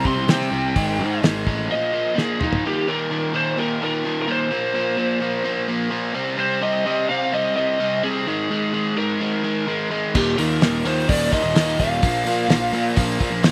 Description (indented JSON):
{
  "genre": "indie rock",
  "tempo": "128 BPM",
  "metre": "4/4",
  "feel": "straight",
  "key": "Eb major",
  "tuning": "A4 = 444 Hz",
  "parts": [
    { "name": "lead guitar through a small cranked amp", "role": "melody", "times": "0.0-13.2 s", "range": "Eb4 to C6", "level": "-26 LUFS", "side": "equal", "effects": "overdrive, slapback echo" },
    { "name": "overdriven electric guitar", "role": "riff", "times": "0.0-13.5 s", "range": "Eb2 to C4", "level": "-25 LUFS", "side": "equal", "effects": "none" },
    { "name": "fuzz picked electric bass", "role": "bass", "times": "0.0-1.7, 10.1-13.5 s", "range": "Eb1 to C3", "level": "-27 LUFS", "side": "equal", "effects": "overdrive" },
    { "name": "cloth-damped thuddy drum kit", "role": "drums", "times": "0.1-2.6, 10.1-13.5 s", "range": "crash cymbal, hi-hat, kick drum, snare drum, toms", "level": "-23 LUFS", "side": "equal", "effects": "none" }
  ],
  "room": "little or no reverb",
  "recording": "recorded outdoors, with no room sound",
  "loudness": "-21 LUFS",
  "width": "mono",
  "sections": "0.0-2.6 A section; 2.6-13.5 B section",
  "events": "lead electric guitar solo 0.0-2.6; drum fill 2.2-2.6",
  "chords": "0.0 C5; 0.8 Ab5; 1.7 Bb5; 2.6 Eb5; 4.5 Bbsus2; 6.2 Cm; 8.3 Absus2; 10.1 Eb5; 12.0 Bb5"
}